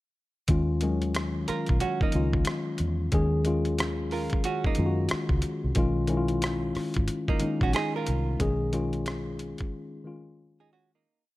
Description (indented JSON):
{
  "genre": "R&B, neo-soul",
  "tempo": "91 BPM",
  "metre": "4/4",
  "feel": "swing 60% on 16ths",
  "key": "Eb minor",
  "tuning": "A4 = 438 Hz",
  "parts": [
    { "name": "tine electric piano", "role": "accompaniment", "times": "0.5-11.1 s", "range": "Eb3 to Ab4", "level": "-29 LUFS", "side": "left 2 dB", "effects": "none" },
    { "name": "vintage muted fingered electric bass", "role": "bass", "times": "0.5-9.5 s", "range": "Ab1 to Gb2", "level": "-29 LUFS", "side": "equal", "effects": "none" },
    { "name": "boom bap sampler-style drum kit", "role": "drums", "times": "0.5-9.7 s", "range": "hi-hat, kick drum, rim click", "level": "-29 LUFS", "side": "equal", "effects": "none" },
    { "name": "hollow-body jazz guitar", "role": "second line", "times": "1.5-11.2 s", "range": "Bb3 to Bb4", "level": "-32 LUFS", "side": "right 6 dB", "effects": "none" }
  ],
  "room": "digital ambience",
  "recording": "none",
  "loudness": "-25 LUFS",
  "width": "side -17 dB against mid",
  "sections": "0.5-11.0 A section",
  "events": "fade-out 8.4-11.0; break 9.7-11.0",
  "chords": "0.5 Ebm9; 5.8 Bmaj9"
}